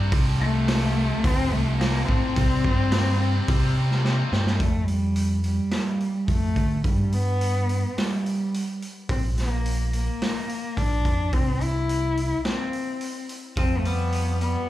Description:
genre	quiet-loud alternative rock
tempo	107 BPM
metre	4/4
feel	straight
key	unclear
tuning	A4 = 440 Hz
part	tight distorted guitar	riff	0.0-4.6 s	F2 to C4	-30 LUFS	right 1 dB	distortion, slapback echo
part	overdriven picked electric bass	bass	0.0-14.5 s	Bb1 to C3	-24 LUFS	equal	none
part	raw garage drum kit	drums	0.1-14.5 s	hi-hat, kick drum, snare drum	-27 LUFS	equal	none
part	warm cello	melody	0.4-14.7 s	G3 to E4	-27 LUFS	left 2 dB	slapback echo
part	twangy electric guitar	arpeggios	13.6-14.7 s	F3 to G3	-33 LUFS	left 2 dB	lush chorus, slapback echo
room	small room ambience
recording	live gig heard through the venue's PA, club reverb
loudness	-21 LUFS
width	side -14 dB against mid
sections	0.0-4.6 A section; 4.6-14.7 B section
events	drum fill 4.0-4.6; half time 4.6-14.7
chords	0.1 F/C; 2.4 C5; 4.6 Fsus2; 6.8 G; 9.1 Bb; 11.3 C; 13.6 Fsus2

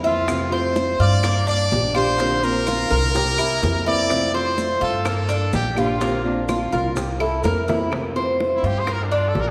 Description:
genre	latin, Cuban son and guajira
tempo	126 BPM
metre	4/4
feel	straight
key	F major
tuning	A4 = 440 Hz
part	fingerpicked steel-string acoustic guitar	accompaniment	0.0-9.5 s	C3 to G4	-28 LUFS	equal	none
part	Cuban tres	arpeggios	0.0-9.5 s	Bb3 to E5	-27 LUFS	equal	none
part	upright bass	bass	0.0-9.5 s	Bb1 to G2	-27 LUFS	equal	none
part	bongos	percussion	0.0-9.5 s	none	-32 LUFS	equal	none
part	maracas	percussion	0.0-7.9 s	none	-44 LUFS	equal	none
part	brilliant trumpet	melody	0.1-9.5 s	D4 to D5	-26 LUFS	equal	none
part	claves	percussion	0.3-9.1 s	none	-40 LUFS	equal	none
part	flamenco guitar	second line	2.9-7.9 s	D4 to Bb4	-29 LUFS	equal	none
room	wet scoring stage reverb, RT60 1.6 s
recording	recorded in a church or concert hall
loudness	-21 LUFS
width	mono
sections	0.0-7.9 A section; 7.9-9.5 B section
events	drum fill 7.4-7.9; trumpet solo 7.9-9.5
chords	0.3 Fmaj7; 1.2 Gm7; 2.2 Bbadd9; 3.1 C7; 4.1 Fmaj7; 5.1 Gm7; 6.0 Bbadd9; 7.0 C7; 7.9 Fmaj7; 8.9 Gm7

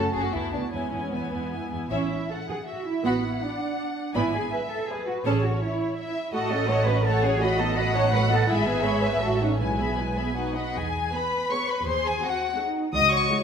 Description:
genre	quick classical-period movement for string orchestra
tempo	147-170 BPM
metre	3/4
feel	rubato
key	A major, E major from 6.3 s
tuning	A4 = 441 Hz
part	muted symphonic violin section	melody	0.0-13.4 s	B4 to D#6	-29 LUFS	left 4 dB	none
part	muted symphonic violin section	second line	0.0-13.4 s	B3 to B5	-30 LUFS	left 2 dB	none
part	muted studio viola section	accompaniment	0.0-13.4 s	G#3 to B4	-30 LUFS	right 2 dB	none
part	muted symphonic cello section	bass	0.0-13.4 s	G#3 to D#5	-29 LUFS	right 3 dB	none
part	muted symphonic double bass section	bass	0.0-13.2 s	F#1 to E2	-29 LUFS	right 2 dB	none
room	wet scoring stage reverb, RT60 1.5 s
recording	minimal, uncompressed stereo recording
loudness	-23 LUFS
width	side -7 dB against mid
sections	0.0-1.9 A section; 1.9-10.8 B section; 10.8-13.4 C section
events	none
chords	0.3 Bm7/D; 0.7 E; 1.9 A; 3.0 Bm7/A; 4.2 E/G#; 5.3 A; 6.3 F#m/A; 7.4 B7/A; 8.5 E/G#; 9.2 F#m/A; 9.6 E/B; 10.4 B; 10.8 E; 11.9 G#7/D#

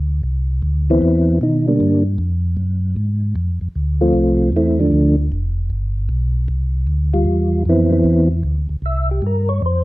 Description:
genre	soul jazz organ trio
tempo	153 BPM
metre	4/4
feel	swing 64% on 8ths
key	C major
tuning	A4 = 439 Hz
part	mellow tonewheel organ	bass	0.0-9.8 s	F1 to B2	-18 LUFS	equal	chorus vibrato, slow rotary speaker
part	percussive tonewheel organ	melody	0.9-9.8 s	D3 to E5	-16 LUFS	equal	slow rotary speaker, chorus vibrato
room	light reverb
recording	close, detailed microphones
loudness	-15 LUFS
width	side -18 dB against mid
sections	0.0-9.6 A section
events	tonewheel organ solo 0.0-9.8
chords	0.2 Cmaj9; 1.8 Gm7; 2.6 F#sus2; 3.4 Fmaj7; 4.9 Dm; 5.7 G; 6.5 Cmaj7; 8.8 C5

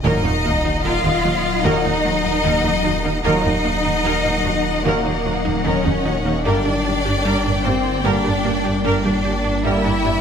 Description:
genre	cinematic, hybrid orchestral and electronic film score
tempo	75 BPM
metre	4/4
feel	straight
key	unclear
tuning	A4 = 436 Hz
part	rich studio violin section	second line	0.0-10.2 s	Bb4 to F5	-25 LUFS	left 5 dB	none
part	rich symphonic viola section	accompaniment	0.0-10.2 s	D4 to Eb5	-26 LUFS	equal	none
part	ethereal airy pad	sustained chords	0.8-10.2 s	Gb3 to G5	-26 LUFS	left 1 dB	ensemble chorus, built-in reverb
part	mellow French horn section	sustained chords	0.0-9.9 s	Bb3 to Bb4	-29 LUFS	left 4 dB	none
part	warm trombone section	sustained chords	0.0-9.9 s	Bb2 to G3	-28 LUFS	right 5 dB	none
part	resonant blip pluck	arpeggios	0.0-10.2 s	Eb3 to G4	-30 LUFS	right 3 dB	none
part	phased detuned saw bass	bass	0.0-10.2 s	Eb1 to G1	-26 LUFS	equal	phaser
part	rich symphonic double bass section	bass	0.0-10.1 s	Eb2 to G2	-24 LUFS	right 3 dB	none
part	sub drop	sound effects	0.0-3.2 s	none	-26 LUFS	equal	none
part	warm studio violin section	melody	0.1-10.2 s	Gb5 to G5	-30 LUFS	left 5 dB	none
part	rich symphonic cello section	bass	0.1-10.2 s	Bb3 to F4	-22 LUFS	equal	none
room	moderate recital hall reverb, RT60 1.4 s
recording	none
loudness	-16 LUFS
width	side -7 dB against mid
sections	0.0-10.2 A section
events	impact 0.0-3.2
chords	0.0 Ebm; 6.4 Gm

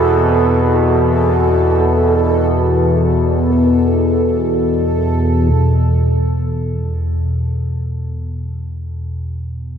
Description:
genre	dark ambient drone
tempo	free time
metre	none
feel	none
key	unclear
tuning	A4 = 440 Hz
part	deep dark ambient pad	sustained chords	0.0-5.5 s	none	barely audible	none	none
part	analog drone	drone	0.0-9.8 s	E2 to B2	-14 LUFS	equal	chorus
part	bubbling stepped-filter texture	texture	0.0-5.5 s	A4	-19 LUFS	right 2 dB	chorus, built-in reverb
room	wet cathedral reverb, RT60 5.8 s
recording	dreamy mix soaked in reverb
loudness	-13 LUFS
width	side -8 dB against mid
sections	0.0-5.5 A section; 5.5-9.8 B section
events	none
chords	0.0 Asus4; 5.5 E5

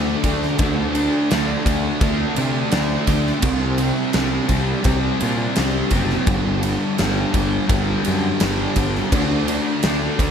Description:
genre	rock, shoegaze and dream pop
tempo	84 BPM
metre	4/4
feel	straight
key	unclear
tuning	A4 = 440 Hz
part	thick fuzz guitar	riff	0.0-10.3 s	G2 to D4	-21 LUFS	equal	distortion, lush chorus
part	fuzz picked electric bass	bass	0.0-10.3 s	F#1 to C3	-23 LUFS	equal	overdrive
part	huge arena drum kit	drums	0.2-10.3 s	crash cymbal, kick drum, ride cymbal, snare drum	-22 LUFS	equal	none
room	moderate lush hall reverb, RT60 3.0 s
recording	dreamy mix soaked in reverb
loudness	-17 LUFS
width	side -7 dB against mid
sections	0.0-10.3 A section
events	none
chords	0.0 D5; 3.4 C5; 6.3 G5; 9.1 D5

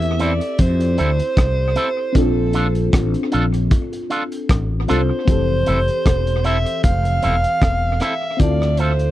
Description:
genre	lovers rock reggae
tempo	77 BPM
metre	4/4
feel	swing 55% on 16ths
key	F major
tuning	A4 = 440 Hz
part	breathy alto saxophone	melody	0.0-9.1 s	A4 to F5	-22 LUFS	right 1 dB	tape echo
part	mellow FM electric piano	accompaniment	0.0-9.1 s	E3 to A4	-25 LUFS	left 3 dB	chorus, phaser
part	mellow fretless electric bass	bass	0.0-9.1 s	E1 to F2	-19 LUFS	equal	lush chorus
part	crunchy breakbeat drum kit	drums	0.0-9.1 s	hi-hat, kick drum, rim click	-19 LUFS	equal	tape echo
part	electric guitar with an envelope filter	stabs	0.2-8.9 s	C4 to A4	-21 LUFS	right 2 dB	none
room	little or no reverb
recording	dry, close 1970s-style studio recording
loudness	-16 LUFS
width	side -14 dB against mid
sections	0.0-9.1 A section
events	none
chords	0.0 Fmaj7; 2.2 Bbmaj7; 5.3 Fmaj7; 8.4 Dm7

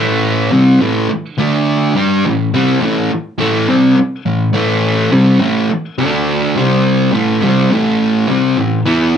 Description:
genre	rock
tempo	104 BPM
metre	4/4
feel	straight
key	unclear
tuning	A4 = 440 Hz
part	fuzz guitar	solo	0.0-9.1 s	A2 to G4	-11 LUFS	equal	distortion
room	wet club reverb, RT60 0.5 s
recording	nothing above 10.4 kHz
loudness	-11 LUFS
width	side -8 dB against mid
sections	0.0-7.7 A section; 7.7-9.2 B section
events	none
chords	0.0 A5; 1.4 D5; 2.0 A5; 6.0 D5; 6.6 C5; 7.1 A5

